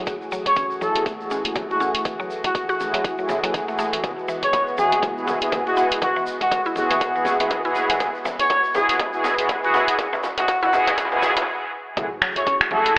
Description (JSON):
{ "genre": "afro house", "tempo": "121 BPM", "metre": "4/4", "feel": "swing 57% on 16ths", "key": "unclear", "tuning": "A4 = 440 Hz", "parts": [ { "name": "warm analog pad", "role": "sustained chords", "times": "0.0-13.0 s", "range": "E3 to G#4", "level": "-31 LUFS", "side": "equal", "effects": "chorus, sidechain pumping" }, { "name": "mallet-like synth pluck", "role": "arpeggios", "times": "0.0-12.9 s", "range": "C#3 to F#4", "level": "-31 LUFS", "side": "equal", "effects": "chorus, sidechain pumping, dub echo" }, { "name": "mellow synth brass", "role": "stabs", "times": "0.0-13.0 s", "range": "A3 to G#4", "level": "-24 LUFS", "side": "equal", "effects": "chorus, sidechain pumping, dub echo" }, { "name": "warm sub bass", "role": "bass", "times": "0.0-12.9 s", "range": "E1 to F#2", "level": "-54 LUFS", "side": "equal", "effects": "none" }, { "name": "deep house drum kit", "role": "drums", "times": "0.1-12.9 s", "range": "finger snaps, hi-hat, toms", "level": "-25 LUFS", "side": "equal", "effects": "none" }, { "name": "electronic kick drum", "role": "drums", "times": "0.1-13.0 s", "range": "none", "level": "-29 LUFS", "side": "equal", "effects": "none" }, { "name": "congas", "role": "percussion", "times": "0.1-12.9 s", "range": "none", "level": "-36 LUFS", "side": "equal", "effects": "none" }, { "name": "tube shaker", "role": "percussion", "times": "0.1-11.5 s", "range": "none", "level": "-42 LUFS", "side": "equal", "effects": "none" }, { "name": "expressive synth lead", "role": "melody", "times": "0.5-12.9 s", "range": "F#4 to C#5", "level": "-22 LUFS", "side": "equal", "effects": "lush chorus, dub echo" }, { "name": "sub drop", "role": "sound effects", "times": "12.1-13.0 s", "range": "none", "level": "-44 LUFS", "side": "equal", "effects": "none" } ], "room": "wet lush hall reverb, RT60 1.8 s", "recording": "high-pass filter, telephone sound", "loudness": "-19 LUFS", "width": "side -24 dB against mid", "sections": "0.0-12.0 A section; 12.0-13.0 B section", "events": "build-up 0.0-12.0; filter sweep on analog polysynth 0.0-12.0; drum fill 4.0-11.5; stop 11.5-12.0; drop 12.0-13.0; impact 12.0-13.0", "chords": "0.0 F#m9; 4.0 Eadd9/F#; 12.0 F#m9", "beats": "| 0.07 0.57 1.06 1.56 | 2.06 2.55 3.05 3.54 | 4.04 4.54 5.03 5.53 | 6.02 6.52 7.01 7.51 | 8.01 8.50 9.00 9.49 | 9.99 10.48 10.98 11.48 | 11.97 12.47 12.96" }